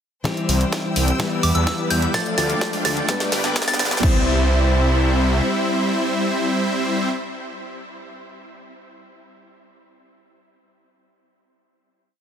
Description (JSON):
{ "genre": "EDM, festival progressive house", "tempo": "127 BPM", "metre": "4/4", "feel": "straight", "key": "C major", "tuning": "A4 = 440 Hz", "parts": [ { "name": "fingerpicked plugged-in steel-string acoustic guitar", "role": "accompaniment", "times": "0.2-7.1 s", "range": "G2 to C5", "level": "-27 LUFS", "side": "left 3 dB", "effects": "sidechain pumping, dub echo" }, { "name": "bright studio string section", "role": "sustained chords", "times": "0.3-7.1 s", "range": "C3 to E6", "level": "-30 LUFS", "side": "left 3 dB", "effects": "sidechain pumping" }, { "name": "supersaw chords", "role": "riff", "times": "0.3-7.1 s", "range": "G3 to A5", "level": "-23 LUFS", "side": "right 1 dB", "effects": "sidechain pumping, low-pass filter, dub echo" }, { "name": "electronic kick drum", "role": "drums", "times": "0.3-4.1 s", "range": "none", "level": "-24 LUFS", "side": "equal", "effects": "high-pass filter on kick, studio reverb, high-pass filter on room" }, { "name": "house drum kit", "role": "drums", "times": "0.3-4.1 s", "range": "crash cymbal, hi-hat, snare drum", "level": "-26 LUFS", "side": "equal", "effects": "high-pass filter on snare, studio reverb, high-pass filter on hats, high-pass filter on cymbals" }, { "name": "riser", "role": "sound effects", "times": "2.1-4.0 s", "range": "none", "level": "-32 LUFS", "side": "left 1 dB", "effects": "none" }, { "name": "wide detuned saw bass", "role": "bass", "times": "0.5-5.4 s", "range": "G1 to E2", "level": "-20 LUFS", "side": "equal", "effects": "chorus, tube saturation, sidechain pumping" }, { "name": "soft synth bell", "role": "melody", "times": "1.4-3.9 s", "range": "D6 to A6", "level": "-28 LUFS", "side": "right 1 dB", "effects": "chorus, phaser, dub echo" } ], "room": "light reverb, digital ambience", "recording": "dense, heavily limited modern master, high-pass filter", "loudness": "-17 LUFS", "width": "side -8 dB against mid", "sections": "0.3-4.0 build; 4.0-7.8 final chord", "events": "build-up 0.3-4.0; drum fill 0.3-4.0; filter sweep on supersaw synth 0.3-4.0; filter sweep 0.3-4.0; riser 2.1-4.0", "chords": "0.3 C; 1.2 Em; 2.1 Dm; 3.1 G; 4.0 C" }